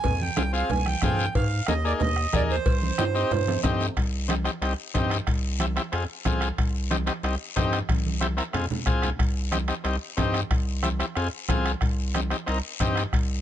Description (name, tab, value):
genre	latin, cumbia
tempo	183 BPM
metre	4/4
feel	straight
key	C minor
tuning	A4 = 441 Hz
part	accordion	melody	0.0-3.6 s	C5 to Ab5	-29 LUFS	right 6 dB	none
part	round analog bass	bass	0.0-13.4 s	C2 to Ab2	-27 LUFS	equal	none
part	bombo	percussion	0.0-13.3 s	none	-28 LUFS	left 1 dB	none
part	congas	percussion	0.0-13.3 s	none	-32 LUFS	right 3 dB	none
part	cowbell and timbales	percussion	0.0-13.3 s	none	-35 LUFS	right 5 dB	none
part	guiro	percussion	0.1-13.4 s	none	-37 LUFS	left 7 dB	none
part	combo organ	accompaniment	0.4-13.0 s	Bb3 to Bb4	-30 LUFS	left 3 dB	none
room	little or no reverb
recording	nothing above 10.7 kHz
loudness	-23 LUFS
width	side -11 dB against mid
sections	0.0-4.0 A section; 4.0-13.4 B section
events	drum fill 3.0-4.0, 7.9-9.2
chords	0.0 Fm; 1.4 Absus2; 2.7 Cm; 5.3 C; 5.9 Fm; 6.6 Cm; 7.9 C7; 8.5 Fm; 9.2 Cm; 10.5 C; 11.2 Fm; 11.8 Cm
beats	| 0.05 0.37 0.70 1.03 | 1.35 1.68 2.01 2.33 | 2.66 2.98 3.31 3.64 | 3.97 4.29 4.62 4.95 | 5.27 5.60 5.93 6.26 | 6.58 6.91 7.24 7.57 | 7.89 8.22 8.55 8.87 | 9.20 9.53 9.86 10.18 | 10.51 10.84 11.16 11.49 | 11.82 12.15 12.47 12.80 | 13.13